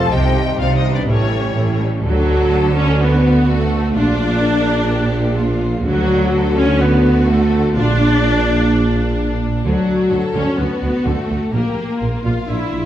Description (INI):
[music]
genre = cinematic, heroic adventure film score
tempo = 127 BPM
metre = 4/4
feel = straight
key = unclear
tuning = A4 = 442 Hz
[part]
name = warm symphonic violin section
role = melody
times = 0.0-12.9 s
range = F#4 to A5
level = -28 LUFS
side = left 5 dB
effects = none
[part]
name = flute section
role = second line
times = 0.0-1.8 s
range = A4 to F5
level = -28 LUFS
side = left 2 dB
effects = none
[part]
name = warm symphonic violin section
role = second line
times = 0.0-12.9 s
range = G3 to Bb4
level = -27 LUFS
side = left 3 dB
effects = none
[part]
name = rich symphonic viola section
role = accompaniment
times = 0.0-12.9 s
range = F#3 to A4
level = -20 LUFS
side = right 1 dB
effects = none
[part]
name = clear trombone section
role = sustained chords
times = 0.0-1.8 s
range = A2 to E3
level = -28 LUFS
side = right 1 dB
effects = none
[part]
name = mellow French horn section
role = sustained chords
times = 0.0-12.9 s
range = F#3 to F4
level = -22 LUFS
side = left 2 dB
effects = none
[part]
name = dark trumpet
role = stabs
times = 0.0-1.8 s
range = G4 to C5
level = -28 LUFS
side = equal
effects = none
[part]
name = clear symphonic cello section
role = bass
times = 0.0-12.8 s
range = A2 to D3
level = -21 LUFS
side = right 2 dB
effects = none
[part]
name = rich symphonic double bass section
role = bass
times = 0.0-12.8 s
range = A1 to D2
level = -20 LUFS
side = right 2 dB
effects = none
[part]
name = warm tuba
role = bass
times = 2.1-12.8 s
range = Bb1 to D2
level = -22 LUFS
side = right 2 dB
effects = none
[sound]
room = wet recital hall reverb, RT60 1.5 s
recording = heard from further back in the room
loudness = -14 LUFS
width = side -12 dB against mid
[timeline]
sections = 0.0-2.0 A section; 2.0-12.9 B section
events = none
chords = 0.1 Cm; 1.1 A7; 2.0 D; 4.0 Bb; 5.9 D; 7.7 Bb; 9.6 D; 11.5 Bb